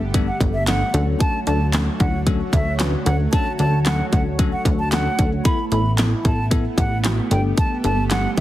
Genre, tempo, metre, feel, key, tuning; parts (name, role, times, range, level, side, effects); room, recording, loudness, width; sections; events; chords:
dance-pop; 113 BPM; 4/4; straight; D major; A4 = 439 Hz
chorused pulse-width pad; sustained chords; 0.0-8.4 s; D3 to C#5; -28 LUFS; right 2 dB; sidechain pumping
plucky analog bass; bass; 0.0-8.4 s; G1 to D2; -21 LUFS; equal; sidechain pumping
bell-like tine electric piano; accompaniment; 0.1-8.4 s; F#3 to B4; -26 LUFS; left 4 dB; phaser, sidechain pumping
pop drum kit; drums; 0.1-8.4 s; handclaps, hi-hat, kick drum, snare drum; -21 LUFS; equal
hollow concert flute; melody; 0.3-8.4 s; E5 to B5; -26 LUFS; right 1 dB; dub echo
light reverb; heavily compressed radio sound, multiband compression; -17 LUFS; side -14 dB against mid
0.0-8.4 A section
0.0 Gadd9; 0.9 Dmaj7; 5.5 Asus2; 7.3 Gadd9